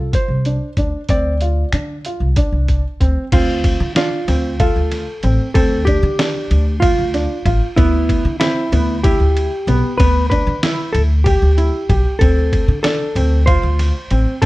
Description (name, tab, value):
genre	progressive instrumental, band music in an uneven meter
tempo	189 BPM (eighths)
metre	7/8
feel	straight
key	D dorian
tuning	A4 = 440 Hz
part	hollow-body jazz guitar	melody	0.0-14.5 s	E4 to D5	-20 LUFS	equal	none
part	dark baby grand piano	arpeggios	0.0-14.5 s	B3 to G4	-22 LUFS	right 1 dB	none
part	upright bass	bass	0.0-14.5 s	A1 to D3	-16 LUFS	equal	none
part	dusty soul sampler-style drum kit	drums	0.1-14.5 s	crash cymbal, finger snaps, hi-hat, kick drum, ride cymbal, snare drum	-19 LUFS	equal	overdrive
room	little or no reverb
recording	dark, warm production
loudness	-14 LUFS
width	side -18 dB against mid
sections	0.0-3.3 A section; 3.3-14.5 B section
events	none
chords	0.0 Dm7; 7.8 Em; 12.2 Dm7